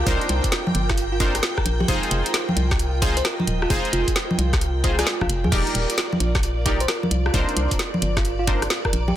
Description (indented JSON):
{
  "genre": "UK garage, two-step garage",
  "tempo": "132 BPM",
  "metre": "4/4",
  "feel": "swing 65% on 16ths",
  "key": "F dorian",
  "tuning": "A4 = 440 Hz",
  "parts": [
    { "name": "bell-like FM electric piano", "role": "melody", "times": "0.0-9.2 s", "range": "F4 to C5", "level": "-30 LUFS", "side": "right 1 dB", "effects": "chorus, phaser, digital delay" },
    { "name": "soft string machine", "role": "sustained chords", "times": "0.0-9.2 s", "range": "D5 to G5", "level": "-33 LUFS", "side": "right 1 dB", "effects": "ensemble chorus, sidechain pumping" },
    { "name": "organ-like FM bass", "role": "bass", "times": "0.0-9.1 s", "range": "Eb1 to F2", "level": "-23 LUFS", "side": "equal", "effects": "none" },
    { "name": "airy breathy pad", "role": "texture", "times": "0.0-9.2 s", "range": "F4 to D6", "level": "-32 LUFS", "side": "right 2 dB", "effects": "chorus, sidechain pumping" },
    { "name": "punchy chord stab", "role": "stabs", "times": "0.1-8.6 s", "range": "D4 to D5", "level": "-27 LUFS", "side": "equal", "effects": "chorus, digital delay" },
    { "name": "electronic kick drum", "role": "drums", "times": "0.1-8.9 s", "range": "none", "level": "-25 LUFS", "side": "equal", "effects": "none" },
    { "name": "garage drum kit", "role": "drums", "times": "0.1-9.1 s", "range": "congas, crash cymbal, hi-hat, rim click, snare drum", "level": "-24 LUFS", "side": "equal", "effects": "none" }
  ],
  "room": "light reverb",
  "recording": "dense, heavily limited modern master",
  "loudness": "-19 LUFS",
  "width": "side -12 dB against mid",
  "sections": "0.0-9.2 A section",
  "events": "none",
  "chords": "0.0 Cm9; 1.9 Fm7; 5.5 Ebmaj7; 7.1 Cm9"
}